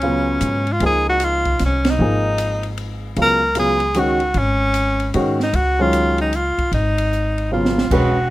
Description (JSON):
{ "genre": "modal jazz", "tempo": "152 BPM", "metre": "3/4", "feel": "swing 64% on 8ths", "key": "Db mixolydian", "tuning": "A4 = 437 Hz", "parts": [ { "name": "clear tenor saxophone", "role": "melody", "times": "0.0-8.3 s", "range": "Db4 to Bb4", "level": "-19 LUFS", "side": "equal", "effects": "none" }, { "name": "warm baby grand piano", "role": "accompaniment", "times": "0.0-8.1 s", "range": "Db3 to B4", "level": "-21 LUFS", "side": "equal", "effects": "none" }, { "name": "upright bass", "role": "bass", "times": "0.0-8.3 s", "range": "E1 to Ab2", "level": "-22 LUFS", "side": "equal", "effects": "none" }, { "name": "open jazz drum kit", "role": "drums", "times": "0.0-8.0 s", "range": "crash cymbal, hi-hat, kick drum, ride cymbal, snare drum", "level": "-27 LUFS", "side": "right 1 dB", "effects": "none" } ], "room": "light reverb", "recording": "rough home demo mix", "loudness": "-16 LUFS", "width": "side -16 dB against mid", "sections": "0.0-7.9 A section", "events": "band accent 1.8; drum fill 7.5-7.9", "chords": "0.0 Db9sus4" }